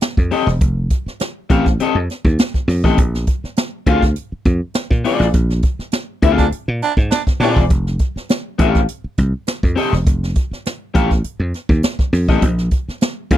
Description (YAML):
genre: funk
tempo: 102 BPM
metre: 4/4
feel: straight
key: F mixolydian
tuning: A4 = 443 Hz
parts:
  - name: jazz brush drum kit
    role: drums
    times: 0.0-13.4 s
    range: hi-hat, kick drum, snare drum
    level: -17 LUFS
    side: equal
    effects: none
  - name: dry thumbed slap bass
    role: bass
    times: 0.2-13.4 s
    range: E1 to Bb2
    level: -17 LUFS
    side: equal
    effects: none
  - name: electric guitar at the edge of break-up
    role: accompaniment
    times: 0.3-13.4 s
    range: C4 to F5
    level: -17 LUFS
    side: left 5 dB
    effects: lush chorus
  - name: raspy baritone saxophone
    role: second line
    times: 6.4-7.6 s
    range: D4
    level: -20 LUFS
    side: right 8 dB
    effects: none
room: little or no reverb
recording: dry, close 1970s-style studio recording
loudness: -15 LUFS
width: side -12 dB against mid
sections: 0.0-13.4 A section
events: band accent 5.3-7.7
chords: 0.0 F9; 3.0 Bb9; 7.7 F9; 12.4 Bb